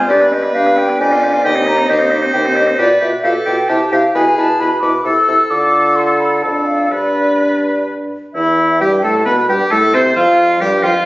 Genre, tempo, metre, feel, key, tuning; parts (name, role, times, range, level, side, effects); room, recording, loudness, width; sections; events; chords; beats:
quick classical-period movement for wind quintet; 132 BPM; 3/4; rubato; A4 = 436 Hz
mellow hollow concert flute; melody; 0.0-11.1 s; D5 to E6; -15 LUFS; left 1 dB
clear oboe; second line; 0.0-11.1 s; Eb4 to C5; -18 LUFS; equal
bright clarinet; accompaniment; 0.0-10.9 s; E4 to Eb5; -21 LUFS; right 2 dB
dark French horn; accompaniment; 0.0-10.9 s; E3 to F4; -20 LUFS; equal
warm bassoon; bass; 0.0-11.1 s; Eb2 to D3; -18 LUFS; equal
wet recital hall reverb, RT60 1.5 s; recorded on a phone in the room, studio reverb, nothing above 7.7 kHz; -11 LUFS; side -18 dB against mid
0.0-8.3 A section; 8.3-11.1 B section
0.1 G; 1.0 G7/F; 1.4 Cm/Eb; 2.8 G7/B; 3.7 C; 4.1 E/B; 5.0 Am/C; 5.5 Dm; 6.4 Dm/F; 6.9 G; 8.3 Emadd11; 9.3 G; 9.7 F; 10.6 Fsus2
| 0.09 0.55 1.00 | 1.45 1.89 2.34 | 2.79 3.24 3.69 | 4.15 4.60 5.05 | 5.50 5.96 6.43 | 6.91 7.39 7.87 | 8.34 8.81 9.26 | 9.72 10.17 10.61